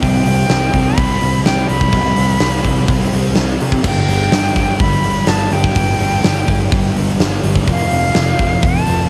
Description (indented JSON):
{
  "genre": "rock, shoegaze and dream pop",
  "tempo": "125 BPM",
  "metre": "4/4",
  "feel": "straight",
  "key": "G mixolydian",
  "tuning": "A4 = 440 Hz",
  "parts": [
    { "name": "bright reedy jazz flute", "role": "melody", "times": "0.0-9.1 s", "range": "F5 to B5", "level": "-22 LUFS", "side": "equal", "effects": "cassette tape, tape echo" },
    { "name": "thick fuzz guitar", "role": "riff", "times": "0.0-9.1 s", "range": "F2 to C4", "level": "-21 LUFS", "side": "equal", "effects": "distortion, subtle chorus, cassette tape" },
    { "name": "overdriven picked electric bass", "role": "bass", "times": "0.0-9.1 s", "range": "F1 to C3", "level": "-20 LUFS", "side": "equal", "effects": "none" },
    { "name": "huge arena drum kit", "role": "drums", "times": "0.0-9.0 s", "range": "crash cymbal, hi-hat, kick drum, snare drum", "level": "-19 LUFS", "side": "equal", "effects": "cassette tape" }
  ],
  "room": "studio reverb",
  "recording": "home recording on cassette",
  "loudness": "-15 LUFS",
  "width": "mono",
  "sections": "0.0-9.1 A section",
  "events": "none",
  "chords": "0.0 C5; 3.8 G5; 7.7 F"
}